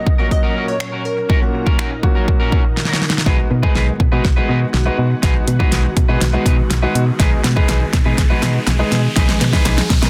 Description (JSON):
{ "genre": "dance-pop", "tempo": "122 BPM", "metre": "4/4", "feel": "straight", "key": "B major", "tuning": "A4 = 442 Hz", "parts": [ { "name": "glassy wavetable pluck", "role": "melody", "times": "0.0-2.0 s", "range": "A#4 to D#5", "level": "-27 LUFS", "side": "equal", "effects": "chorus, digital delay" }, { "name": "ethereal airy pad", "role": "sustained chords", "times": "0.0-10.1 s", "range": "A#2 to A#4", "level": "-29 LUFS", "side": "equal", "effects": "ensemble chorus, built-in reverb, sidechain pumping" }, { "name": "electric guitar at the edge of break-up", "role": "riff", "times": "0.1-10.1 s", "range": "C#4 to B4", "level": "-28 LUFS", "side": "equal", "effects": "subtle chorus" }, { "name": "pop drum kit", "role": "drums", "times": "0.1-10.1 s", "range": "finger snaps, hi-hat, kick drum, snare drum", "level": "-18 LUFS", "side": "equal", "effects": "soft clipping on snare" }, { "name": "warm concert grand piano", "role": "accompaniment", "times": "0.2-10.1 s", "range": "A#2 to A#4", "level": "-26 LUFS", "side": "equal", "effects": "sidechain pumping" }, { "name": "solid FM bass", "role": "bass", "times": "3.3-10.1 s", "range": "B1 to B2", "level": "-20 LUFS", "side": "equal", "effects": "sidechain pumping" }, { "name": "riser", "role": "sound effects", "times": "5.2-10.1 s", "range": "none", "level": "-32 LUFS", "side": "equal", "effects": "none" }, { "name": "group handclap", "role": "percussion", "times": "7.7-9.8 s", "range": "none", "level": "-30 LUFS", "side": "equal", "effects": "none" } ], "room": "light reverb, digital ambience", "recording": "dense, heavily limited modern master", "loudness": "-16 LUFS", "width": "mono", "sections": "0.0-3.3 A section; 3.3-10.1 B section", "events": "drum fill 2.8-3.3, 3.3-10.1; build-up 3.3-10.1; riser 5.2-10.1", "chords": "0.0 F#/A#; 3.3 B6; 7.2 G#m/B" }